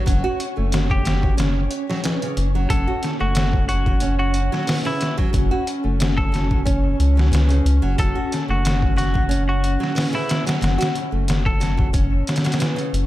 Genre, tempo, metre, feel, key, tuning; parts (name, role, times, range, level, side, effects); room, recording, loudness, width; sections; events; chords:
trip hop; 91 BPM; 4/4; swing 54% on 16ths; F# minor; A4 = 441 Hz
warbly tape-like pad; sustained chords; 0.0-13.1 s; C#4; -29 LUFS; left 1 dB; chorus, built-in reverb
nylon-string guitar; arpeggios; 0.0-12.9 s; C#3 to F#4; -27 LUFS; right 2 dB; ping-pong delay
flickering grainy texture; texture; 0.0-13.1 s; C#4 to C#5; -36 LUFS; right 1 dB; built-in reverb
round analog bass; bass; 0.1-13.1 s; F#1 to C#2; -20 LUFS; equal
trip hop sampler-style drum kit; drums; 0.1-13.1 s; hi-hat, kick drum, snare drum; -22 LUFS; equal; overdrive
semi-hollow electric guitar; melody; 0.9-11.9 s; E4 to A4; -28 LUFS; equal; dub echo
little or no reverb; -17 LUFS; side -15 dB against mid
0.0-13.1 A section
0.1 A/F#; 1.4 F#5; 2.7 F#m; 5.3 A/F#; 6.7 F#5; 8.0 F#m; 10.6 A/F#; 11.9 F#5